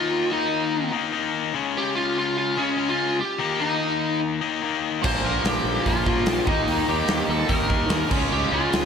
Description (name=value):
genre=hard rock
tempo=146 BPM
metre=4/4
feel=straight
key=unclear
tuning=A4 = 441 Hz
part: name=high-gain lead guitar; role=melody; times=0.0-8.9 s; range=Db4 to C5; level=-25 LUFS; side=equal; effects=distortion
part: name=cranked stack guitar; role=riff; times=0.0-8.9 s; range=Bb2 to Eb4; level=-26 LUFS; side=left 8 dB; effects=overdrive
part: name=cranked stack guitar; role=riff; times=5.0-8.9 s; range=Bb2 to Eb4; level=-29 LUFS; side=right 11 dB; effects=overdrive, slapback echo
part: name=cranked stack guitar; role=riff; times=5.0-8.9 s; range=Bb2 to F4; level=-31 LUFS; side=right 1 dB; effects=overdrive, phaser, slapback echo
part: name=fuzz fingered electric bass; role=bass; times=5.0-8.9 s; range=Bb1 to Eb2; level=-29 LUFS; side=right 1 dB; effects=overdrive
part: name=big rock drum kit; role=drums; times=5.0-8.8 s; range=crash cymbal, hi-hat, kick drum, snare drum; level=-25 LUFS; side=equal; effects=none
room=moderate lush hall reverb, RT60 1.8 s, small room ambience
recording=big arena sound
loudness=-21 LUFS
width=side -6 dB against mid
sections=0.0-8.9 A section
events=none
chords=0.0 Eb5; 1.5 Db5; 3.4 Eb5; 5.0 Bb; 6.5 Eb; 8.1 Db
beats=| 0.11 0.52 0.93 1.34 | 1.75 2.16 2.57 2.98 | 3.39 3.80 4.21 4.62 | 5.03 5.44 5.85 6.26 | 6.67 7.08 7.50 7.91 | 8.31 8.72